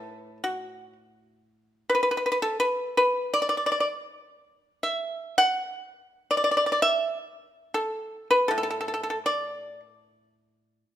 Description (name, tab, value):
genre	chinese traditional, Chinese solo plucked strings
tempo	81 BPM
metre	2/4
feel	uneven beats, rubato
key	unclear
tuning	A4 = 440 Hz
part	pipa	solo	0.0-10.8 s	A2 to F#5	-23 LUFS	equal	none
room	light reverb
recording	minimal, uncompressed stereo recording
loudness	-23 LUFS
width	side -11 dB against mid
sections	0.0-10.0 A section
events	none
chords	none